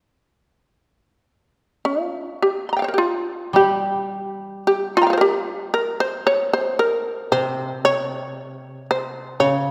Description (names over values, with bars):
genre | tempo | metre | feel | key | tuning
japanese traditional, Japanese chamber music | 52-58 BPM | 4/4 | rubato | C in sen | A4 = 440 Hz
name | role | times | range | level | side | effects
shamisen | melody | 0.0-9.7 s | F4 to C6 | -22 LUFS | equal | none
koto | accompaniment | 3.5-9.7 s | C3 to G3 | -28 LUFS | equal | none
room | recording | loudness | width
wet concert hall reverb, RT60 2.1 s | recorded in a church or concert hall | -21 LUFS | mono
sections
0.0-3.0 A section; 3.0-9.7 B section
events
none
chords
none